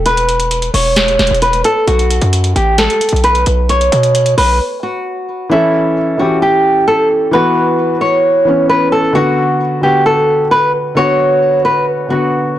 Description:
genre	hip hop, trap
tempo	132 BPM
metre	4/4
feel	half-time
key	B minor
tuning	A4 = 439 Hz
part	hard-hitting 808-style bass	bass	0.0-4.6 s	E1 to B2	-14 LUFS	equal	none
part	flamenco guitar	melody	0.1-12.6 s	E4 to C#5	-12 LUFS	equal	none
part	booming analog drum machine	drums	0.1-4.5 s	hi-hat, snare drum	-18 LUFS	equal	none
part	felt-muted upright piano	accompaniment	5.5-12.6 s	D3 to A4	-15 LUFS	left 2 dB	none
room	light reverb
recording	blown-out, overdriven recording, overdrive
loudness	-10 LUFS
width	side -12 dB against mid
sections	0.0-5.5 A section; 5.5-12.6 B section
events	break 4.6-5.5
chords	0.1 E5; 1.9 B5; 5.5 A; 7.3 Esus2; 9.1 Bm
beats	| 0.06 0.51 0.97 1.42 | 1.88 2.33 2.79 3.24 | 3.69 4.15 4.60 5.06 | 5.51 5.97 6.42 6.88 | 7.33 7.79 8.24 8.69 | 9.15 9.60 10.06 10.51 | 10.97 11.42 11.88 12.33

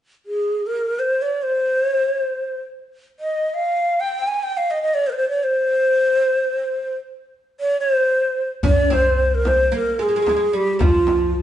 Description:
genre	Arabic maqam ensemble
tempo	free time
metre	none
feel	none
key	C maqam bayati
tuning	A4 = 439 Hz
part	breathy bright low ney	melody	0.3-11.4 s	F4 to Ab5	-18 LUFS	equal	none
part	oud	second line	8.6-11.3 s	F3 to D4-50c	-25 LUFS	equal	none
part	upright bass	bass	8.6-11.4 s	C2	-22 LUFS	equal	none
part	darbuka	percussion	8.6-11.2 s	none	-27 LUFS	left 2 dB	none
part	frame drum	percussion	8.6-11.2 s	none	-22 LUFS	left 1 dB	none
room	wet stone room reverb, RT60 1.3 s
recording	band playing live in one room, nothing above 10.3 kHz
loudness	-17 LUFS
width	side -11 dB against mid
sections	0.0-8.6 A section; 8.6-11.4 B section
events	none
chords	none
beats	free time

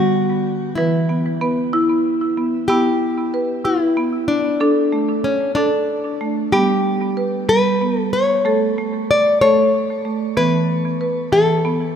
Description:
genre	world meditative, meditative tuned percussion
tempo	63 BPM (dotted quarters)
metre	6/8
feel	straight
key	E dorian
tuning	A4 = 438 Hz
part	nylon-string guitar	melody	0.0-12.0 s	C#4 to D5	-18 LUFS	left 3 dB	shimmer reverb
part	marimba with medium hard mallets	arpeggios	0.0-12.0 s	E3 to B4	-18 LUFS	right 2 dB	shimmer reverb, tape echo
room	wet recital hall reverb, RT60 1.7 s, studio reverb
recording	none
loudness	-15 LUFS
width	side -8 dB against mid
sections	0.0-2.7 A section; 2.7-12.0 B section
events	none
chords	0.0 G; 0.8 E5; 2.7 Em; 4.6 D5; 6.5 G; 8.4 A; 10.4 E5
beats	| 0.78 1.74 | 2.70 3.66 | 4.62 5.58 | 6.53 7.49 | 8.45 9.41 | 10.37 11.33

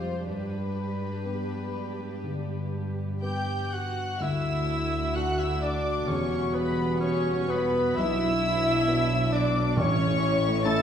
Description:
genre	cinematic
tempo	60-68 BPM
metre	4/4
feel	rubato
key	D major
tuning	A4 = 440 Hz
part	warm studio violin section	melody	0.0-10.8 s	B4 to A6	-34 LUFS	left 3 dB	none
part	warm studio violin section	second line	0.0-10.8 s	D4 to A5	-34 LUFS	left 1 dB	none
part	dark baby grand piano	accompaniment	0.0-10.8 s	A1 to B4	-32 LUFS	left 1 dB	none
part	warm studio viola section	accompaniment	0.0-10.8 s	G3 to A4	-34 LUFS	equal	none
part	dark studio cello section	bass	0.0-10.8 s	D2 to B2	-33 LUFS	right 2 dB	none
part	mellow hollow concert flute	second line	3.2-10.8 s	B4 to A5	-33 LUFS	left 1 dB	none
part	warm cor anglais	second line	3.2-10.8 s	B3 to A4	-35 LUFS	right 2 dB	none
part	dark French horn section	sustained chords	4.2-10.8 s	F#3 to F#4	-32 LUFS	left 2 dB	none
part	warm studio double bass section	bass	4.2-10.8 s	E1 to D2	-33 LUFS	right 3 dB	none
part	timpani	percussion	9.8-10.8 s	A2	-33 LUFS	equal	none
room	wet scoring stage reverb, RT60 1.8 s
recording	heard from further back in the room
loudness	-24 LUFS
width	side -8 dB against mid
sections	0.0-4.2 A section; 4.2-10.8 A section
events	none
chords	0.3 G; 4.2 D; 6.1 Emadd9; 8.0 Bm; 9.8 A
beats	| 0.27 1.26 2.24 3.23 | 4.21 5.17 6.09 7.01 | 7.98 8.88 9.77 10.66

